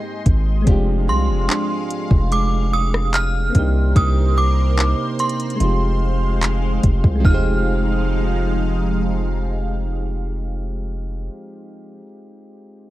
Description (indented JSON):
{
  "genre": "contemporary R&B",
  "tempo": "73 BPM",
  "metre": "4/4",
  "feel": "straight",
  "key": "F dorian",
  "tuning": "A4 = 444 Hz",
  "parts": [
    { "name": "synth chime", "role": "melody", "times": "0.0-12.0 s", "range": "C6 to G6", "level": "-25 LUFS", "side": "right 1 dB", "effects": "ensemble chorus, digital delay" },
    { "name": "soft electric-piano-like synth keys", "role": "accompaniment", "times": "0.0-12.9 s", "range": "Ab3 to G4", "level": "-27 LUFS", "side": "left 2 dB", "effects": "chorus" },
    { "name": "lush unison pad", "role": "sustained chords", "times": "0.0-11.3 s", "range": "F3 to C6", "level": "-28 LUFS", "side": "left 1 dB", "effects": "chorus, phaser, sidechain pumping" },
    { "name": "nylon-string guitar", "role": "arpeggios", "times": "0.0-12.1 s", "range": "C3 to C5", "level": "-28 LUFS", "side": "right 6 dB", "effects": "none" },
    { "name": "long sustained 808-style bass", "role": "bass", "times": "0.3-11.3 s", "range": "F1 to C2", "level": "-19 LUFS", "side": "equal", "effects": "none" },
    { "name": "smooth R&B drum kit", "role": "drums", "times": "0.3-7.4 s", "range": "handclaps, hi-hat, kick drum, rim click, toms", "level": "-17 LUFS", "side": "equal", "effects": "none" }
  ],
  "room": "little or no reverb",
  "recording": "dark, warm production",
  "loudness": "-16 LUFS",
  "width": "side -16 dB against mid",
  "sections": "0.0-7.2 A section; 7.2-10.5 B section",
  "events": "none",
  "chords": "0.0 Abmaj7; 0.7 Fm69; 3.5 Cm7; 5.6 Fm7"
}